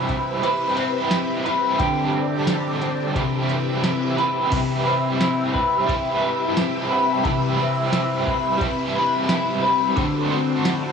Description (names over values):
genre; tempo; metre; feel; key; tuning
dream pop; 88 BPM; 4/4; straight; C lydian; A4 = 440 Hz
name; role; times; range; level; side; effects
biting overdriven guitar; accompaniment; 0.0-10.9 s; C3 to C5; -25 LUFS; right 4 dB; tremolo, wide subtle chorus
phased string machine; sustained chords; 0.0-10.9 s; C4 to E5; -26 LUFS; left 1 dB; ensemble chorus, phaser
semi-hollow electric guitar; arpeggios; 0.0-10.9 s; C3 to B4; -23 LUFS; left 3 dB; analog chorus, digital delay
small celesta; texture; 0.0-9.8 s; E5 to B5; -32 LUFS; right 4 dB; none
soft vintage rhythm box; drums; 0.1-10.8 s; crash cymbal, hi-hat, kick drum, ride cymbal, snare drum, tambourine; -26 LUFS; right 1 dB; none
room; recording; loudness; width
light reverb, digital ambience; worn, warbling old tape, cassette tape, warbly pitch drift, studio ambience; -19 LUFS; side -6 dB against mid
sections
0.0-4.5 A section; 4.5-10.9 B section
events
none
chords
0.0 Cmaj7; 1.8 D7sus4; 3.2 Cmaj7; 10.0 D7